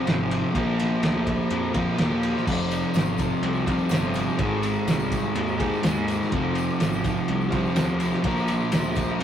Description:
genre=garage rock duo or trio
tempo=125 BPM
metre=4/4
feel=straight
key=F minor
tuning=A4 = 441 Hz
part: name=fuzz guitar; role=riff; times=0.0-9.2 s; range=F2 to Bb3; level=-24 LUFS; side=equal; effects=distortion
part: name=fuzz picked electric bass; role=bass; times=0.1-9.2 s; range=F1 to F2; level=-31 LUFS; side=equal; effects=overdrive
part: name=cloth-damped thuddy drum kit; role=drums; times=0.1-9.2 s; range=crash cymbal, kick drum, ride cymbal, snare drum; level=-27 LUFS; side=equal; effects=none
part: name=tambourine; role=percussion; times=2.5-9.2 s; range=none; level=-46 LUFS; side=right 4 dB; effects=none
room=moderate small room reverb, RT60 0.5 s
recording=rough rehearsal-room recording, tube saturation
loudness=-22 LUFS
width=side -9 dB against mid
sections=0.0-9.2 A section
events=none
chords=0.0 Fm; 0.5 Bb; 2.5 Fm; 4.4 Ab; 6.3 Fm; 8.2 Bb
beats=0.07 | 0.55 1.03 1.51 1.99 | 2.47 2.95 3.43 3.91 | 4.39 4.87 5.35 5.84 | 6.32 6.80 7.28 7.76 | 8.24 8.72 9.21

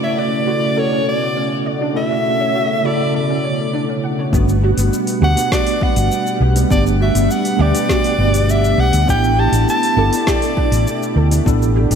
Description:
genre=sunset chillout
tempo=101 BPM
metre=4/4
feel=straight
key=unclear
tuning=A4 = 443 Hz
part: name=clear soprano saxophone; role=melody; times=0.0-11.2 s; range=C#5 to A5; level=-20 LUFS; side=equal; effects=ping-pong delay
part: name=tine electric piano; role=accompaniment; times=0.0-12.0 s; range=C#3 to B4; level=-21 LUFS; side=right 1 dB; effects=medium stereo tremolo, auto-pan, ping-pong delay
part: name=lush unison pad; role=sustained chords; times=0.0-12.0 s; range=B2 to F#5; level=-23 LUFS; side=equal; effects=chorus
part: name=soft round pluck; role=arpeggios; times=0.0-12.0 s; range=B3 to F#5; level=-25 LUFS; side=right 2 dB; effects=ensemble chorus, ping-pong delay
part: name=hollow-body short-scale fingered electric bass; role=bass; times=0.0-12.0 s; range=G1 to D2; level=-15 LUFS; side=equal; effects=tube saturation
part: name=electronic kick drum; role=drums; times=4.3-11.6 s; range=none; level=-19 LUFS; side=equal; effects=studio reverb
part: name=smooth R&B drum kit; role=drums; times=4.3-12.0 s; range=hi-hat, shaker, snare drum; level=-26 LUFS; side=left 1 dB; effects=studio reverb
room=wet lush hall reverb, RT60 2.3 s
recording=dreamy mix soaked in reverb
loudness=-14 LUFS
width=side -7 dB against mid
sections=0.0-4.3 A section; 4.3-12.0 B section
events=filter sweep on tine electric piano 0.0-4.3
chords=0.0 Dmaj7; 4.3 Gmaj7; 9.1 A7sus4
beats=0.17 0.77 1.36 | 1.96 2.55 3.14 3.74 | 4.33 4.93 5.52 6.11 | 6.71 7.30 7.90 8.49 | 9.08 9.68 10.27 10.87 | 11.46

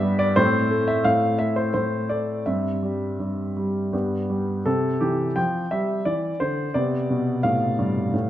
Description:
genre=classical-period piano sonatina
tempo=85 BPM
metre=3/4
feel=uneven beats, rubato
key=C major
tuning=A4 = 439 Hz
part: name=warm baby grand piano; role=solo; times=0.0-8.3 s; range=G2 to G5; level=-21 LUFS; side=equal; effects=none
room=moderate recital hall reverb, RT60 1.4 s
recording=none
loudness=-21 LUFS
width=side -12 dB against mid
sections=0.0-4.7 A section; 4.7-8.3 B section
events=none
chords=0.4 Am; 2.5 C/G; 3.9 G; 4.7 C; 6.7 G7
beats=| 0.37 1.05 1.74 | 2.46 3.20 3.93 | 4.66 5.37 6.06 | 6.75 7.44 8.13

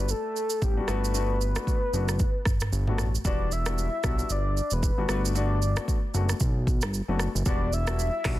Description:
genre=afrobeats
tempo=114 BPM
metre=4/4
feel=swing 58% on 16ths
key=E minor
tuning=A4 = 440 Hz
part: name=soft octave-layered synth lead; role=melody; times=0.0-8.4 s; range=G4 to E5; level=-31 LUFS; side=left 1 dB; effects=chorus, ping-pong delay
part: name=warm concert grand piano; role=accompaniment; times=0.0-8.4 s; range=G3 to F#4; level=-34 LUFS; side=left 5 dB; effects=none
part: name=fat analog bass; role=bass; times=0.0-8.4 s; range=E1 to B1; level=-27 LUFS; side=equal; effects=none
part: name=afro-pop drum kit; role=drums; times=0.1-8.4 s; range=handclaps, hi-hat, kick drum, rim click, shaker, toms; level=-28 LUFS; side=right 1 dB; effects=soft clipping on snare
room=little or no reverb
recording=dense, heavily limited modern master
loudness=-24 LUFS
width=side -15 dB against mid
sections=0.0-3.2 A section; 3.2-8.4 B section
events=none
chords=0.0 Em (rootless); 0.9 Gmaj7; 3.2 Em7; 5.1 Gmaj7; 7.5 Em7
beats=0.09 0.62 | 1.15 1.67 2.20 2.72 | 3.25 3.78 4.30 4.83 | 5.36 5.88 6.41 6.93 | 7.46 7.99

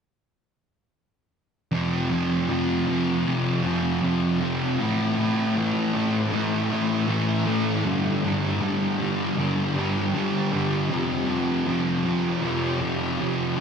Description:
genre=rock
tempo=79 BPM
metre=4/4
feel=straight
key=F major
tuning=A4 = 440 Hz
part: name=fuzz guitar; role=solo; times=1.7-13.6 s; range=F2 to A3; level=-22 LUFS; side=equal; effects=distortion, lush chorus, ping-pong delay
room=wet huge ambient reverb, RT60 7.9 s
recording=dreamy mix soaked in reverb, nothing above 10.5 kHz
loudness=-22 LUFS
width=side -6 dB against mid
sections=1.8-13.6 A section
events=none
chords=1.8 F5; 4.8 A5; 7.9 G5; 10.9 F5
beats=| 1.75 2.52 3.28 4.05 | 4.82 5.58 6.34 7.11 | 7.87 8.64 9.40 10.16 | 10.93 11.69 12.45 13.21

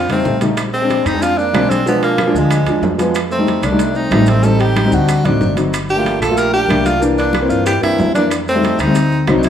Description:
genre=Afro-Cuban jazz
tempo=186 BPM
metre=4/4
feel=straight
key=F mixolydian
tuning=A4 = 442 Hz
part: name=edgy tenor saxophone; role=melody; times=0.0-9.5 s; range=G#3 to Bb4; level=-18 LUFS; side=equal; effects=none
part: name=clear trombone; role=second line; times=0.0-9.5 s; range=F3 to G4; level=-26 LUFS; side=right 2 dB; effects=none
part: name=upright bass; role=bass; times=0.0-9.5 s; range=G1 to G2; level=-19 LUFS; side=equal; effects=none
part: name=warm grand piano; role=accompaniment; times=0.1-9.5 s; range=E3 to F4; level=-17 LUFS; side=left 2 dB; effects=none
part: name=congas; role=percussion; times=0.1-9.5 s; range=none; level=-24 LUFS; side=left 1 dB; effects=none
part: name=maracas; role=percussion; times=0.1-9.5 s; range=none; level=-35 LUFS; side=equal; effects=none
part: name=timbales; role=percussion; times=0.1-9.5 s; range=none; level=-25 LUFS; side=right 7 dB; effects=none
part: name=bongos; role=percussion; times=0.3-9.5 s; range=none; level=-33 LUFS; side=left 8 dB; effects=none
part: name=claves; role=percussion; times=0.6-9.4 s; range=none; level=-33 LUFS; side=left 1 dB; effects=none
room=moderate lush hall reverb, RT60 2.6 s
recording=rough home demo mix, small room ambience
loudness=-12 LUFS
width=side -9 dB against mid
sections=0.0-9.5 A section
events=drum fill 0.0-0.6, 5.2-5.7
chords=0.0 F9; 0.6 Bb9; 1.9 Bdim7; 3.2 F9; 4.4 Am7b5; 5.1 D7b9; 5.7 Gm7; 7.0 C9; 8.3 F9; 8.9 D7b9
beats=0.26 | 0.58 0.90 1.22 1.54 | 1.87 2.19 2.51 2.83 | 3.15 3.48 3.80 4.12 | 4.44 4.76 5.09 5.41 | 5.73 6.05 6.37 6.70 | 7.02 7.34 7.66 7.98 | 8.31 8.63 8.95 9.27

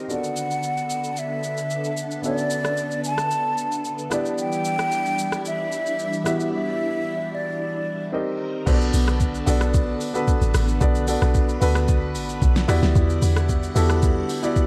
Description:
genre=amapiano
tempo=112 BPM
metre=4/4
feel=straight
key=unclear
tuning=A4 = 439 Hz
part: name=dark grand piano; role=accompaniment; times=0.0-14.7 s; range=B3 to E5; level=-29 LUFS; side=equal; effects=none
part: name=phased string machine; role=sustained chords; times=0.0-14.7 s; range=D3 to F#5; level=-33 LUFS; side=equal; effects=ensemble chorus, phaser, sidechain pumping
part: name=mellow hollow concert flute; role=melody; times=0.1-8.4 s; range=D5 to A5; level=-28 LUFS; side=equal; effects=digital delay
part: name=smooth R&B drum kit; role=drums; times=0.1-14.7 s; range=crash cymbal, hi-hat, kick drum, rim click, shaker, snare drum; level=-27 LUFS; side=equal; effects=none
part: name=deep log drum bass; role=bass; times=8.7-14.2 s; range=A1 to E2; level=-23 LUFS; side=equal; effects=none
room=light reverb, digital ambience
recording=dark, warm production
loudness=-23 LUFS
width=mono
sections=0.0-8.7 A section; 8.7-14.7 B section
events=break 6.5-8.7; drop 8.7-14.7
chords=0.1 Bm7; 4.1 Em9; 8.1 Cm7; 8.7 Bm7; 12.7 Em9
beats=| 0.10 0.63 1.17 1.71 | 2.24 2.78 3.31 3.85 | 4.38 4.92 5.46 5.99 | 6.53 7.06 7.60 8.13 | 8.67 9.21 9.74 10.28 | 10.81 11.35 11.88 12.42 | 12.96 13.49 14.03 14.56

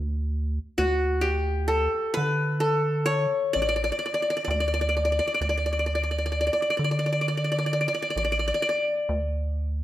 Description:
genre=Turkish makam ensemble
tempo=130 BPM (eighths)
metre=10/8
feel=straight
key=D makam rast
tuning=A4 = 444 Hz
part: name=rubbery square bass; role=bass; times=0.0-9.8 s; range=A1 to D3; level=-27 LUFS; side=equal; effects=none
part: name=qanun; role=melody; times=0.8-9.7 s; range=F#4 to D5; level=-24 LUFS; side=left 1 dB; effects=none
room=moderate recital hall reverb, RT60 1.3 s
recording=none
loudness=-23 LUFS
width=side -13 dB against mid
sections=0.0-9.8 A section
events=none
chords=none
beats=0.31 | 0.78 1.24 1.70 2.16 2.62 3.08 3.55 4.01 4.47 4.93 | 5.39 5.85 6.32 6.78 7.24 7.70 8.16 8.62 9.08 9.55

